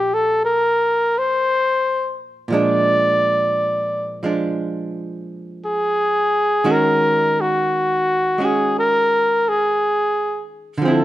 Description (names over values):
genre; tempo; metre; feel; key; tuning
jazz ballad; 58 BPM; 4/4; swing 69% on 8ths; unclear; A4 = 440 Hz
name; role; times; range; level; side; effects
warm flugelhorn; melody; 0.0-11.0 s; Gb4 to D5; -17 LUFS; equal; plate reverb
archtop guitar, miked and amplified; accompaniment; 0.0-11.0 s; Bb2 to Gb4; -22 LUFS; right 2 dB; none
room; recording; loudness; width
light reverb; none; -16 LUFS; side -14 dB against mid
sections
0.0-11.0 A section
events
none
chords
0.0 Bb; 2.5 Bb7; 6.6 Ebm7